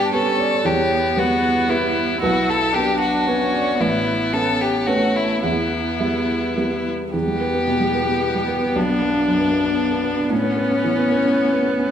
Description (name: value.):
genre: neoclassical piano and strings.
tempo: 103-117 BPM.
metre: 3/4.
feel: rubato.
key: E dorian.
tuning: A4 = 440 Hz.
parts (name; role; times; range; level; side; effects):
clear violin; melody; 0.0-11.9 s; C#4 to A4; -21 LUFS; left 3 dB; none.
clear viola; accompaniment; 0.0-11.9 s; A3 to E4; -24 LUFS; right 3 dB; none.
felt-muted upright piano; accompaniment; 0.0-11.9 s; A1 to F#5; -21 LUFS; right 1 dB; none.
room: wet recital hall reverb, RT60 1.3 s.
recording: recorded in a church or concert hall.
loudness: -17 LUFS.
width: side -9 dB against mid.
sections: 0.0-7.1 A section; 7.1-11.9 B section.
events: none.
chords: 0.0 G; 0.7 Em; 2.2 Bm; 3.8 Aadd9; 5.4 Em; 8.8 Bm; 10.3 Aadd9.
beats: 0.13 | 0.65 1.17 1.70 | 2.22 2.75 3.27 | 3.80 4.34 4.88 | 5.44 6.01 6.57 | 7.14 7.69 8.23 | 8.76 9.28 9.79 | 10.31 10.84 11.38.